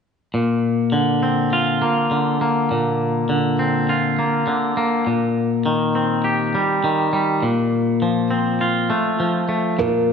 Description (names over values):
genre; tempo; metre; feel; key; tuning
rock; 102 BPM; 4/4; straight; Bb major; A4 = 440 Hz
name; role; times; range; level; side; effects
twangy electric guitar; arpeggios; 0.3-10.1 s; Bb2 to G4; -17 LUFS; left 1 dB; slapback echo
felt-muted upright piano; arpeggios; 9.8-10.1 s; Bb4; -18 LUFS; right 2 dB; slapback echo
room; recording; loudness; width
wet concert hall reverb, RT60 2.3 s; nothing above 10.3 kHz; -17 LUFS; side -6 dB against mid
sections
0.3-10.1 A section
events
none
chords
0.3 Bbadd9; 5.1 Cm/Bb; 7.4 F/Bb